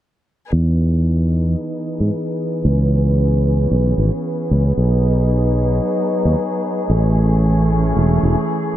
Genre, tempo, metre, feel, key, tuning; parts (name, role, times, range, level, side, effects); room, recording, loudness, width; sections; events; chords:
folktronica; 113 BPM; 4/4; swing 56% on 16ths; E major; A4 = 440 Hz
warm string quartet; sustained chords; 0.5-8.8 s; E3 to G#4; -20 LUFS; equal
fingered electric bass; bass; 0.5-8.3 s; E1 to G#2; -15 LUFS; equal
shaker; drums; 0.5-8.7 s; barely audible
moderate lush hall reverb, RT60 1.8 s, small room reverb; dreamy mix soaked in reverb, low-pass filter; -15 LUFS; side -12 dB against mid
0.5-8.8 A section
filter sweep on fingered electric bass 0.5-8.8; filter sweep 0.5-8.8
0.5 Emaj7; 2.7 C#m7; 4.8 G#m7/B; 6.9 Amaj7